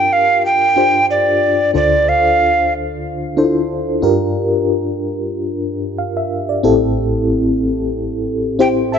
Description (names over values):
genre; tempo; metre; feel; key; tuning
pop; 92 BPM; 4/4; swing 55% on 16ths; unclear; A4 = 440 Hz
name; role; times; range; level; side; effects
breathy mellow tenor recorder; melody; 0.0-2.7, 8.6-9.0 s; D5 to G5; -13 LUFS; right 1 dB; none
FM electric piano with tremolo; accompaniment; 0.0-9.0 s; A1 to A5; -16 LUFS; left 1 dB; phaser
room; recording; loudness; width
moderate plate reverb, RT60 3.3 s; nothing above 7.9 kHz; -13 LUFS; side -7 dB against mid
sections
0.0-9.0 A section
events
FM electric piano fill 8.6-9.0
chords
0.0 Gm7; 1.7 Dm7; 4.0 Gm7; 6.6 Am7